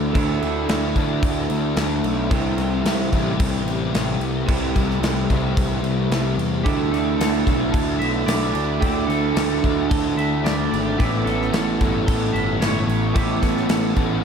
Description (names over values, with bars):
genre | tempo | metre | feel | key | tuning
rock, shoegaze and dream pop | 111 BPM | 4/4 | straight | unclear | A4 = 440 Hz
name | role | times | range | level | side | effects
electric guitar through a small old amp | riff | 0.0-14.2 s | A2 to G4 | -24 LUFS | right 8 dB | reverse reverb
thick fuzz guitar | riff | 0.0-14.2 s | A2 to D4 | -24 LUFS | left 8 dB | distortion, ensemble chorus
fuzz picked electric bass | bass | 0.0-14.2 s | G1 to E2 | -26 LUFS | equal | overdrive
gated 80s drum kit | drums | 0.2-14.1 s | crash cymbal, kick drum, snare drum | -24 LUFS | equal | none
twangy electric guitar | arpeggios | 6.6-14.2 s | G4 to E5 | -28 LUFS | right 1 dB | wide subtle chorus, analog delay
room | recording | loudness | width
moderate huge ambient reverb, RT60 4.5 s | dreamy mix soaked in reverb | -18 LUFS | side -7 dB against mid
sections
0.0-14.2 A section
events
none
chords
0.0 Dsus2; 2.3 C6; 6.6 Dsus2; 11.0 Aadd9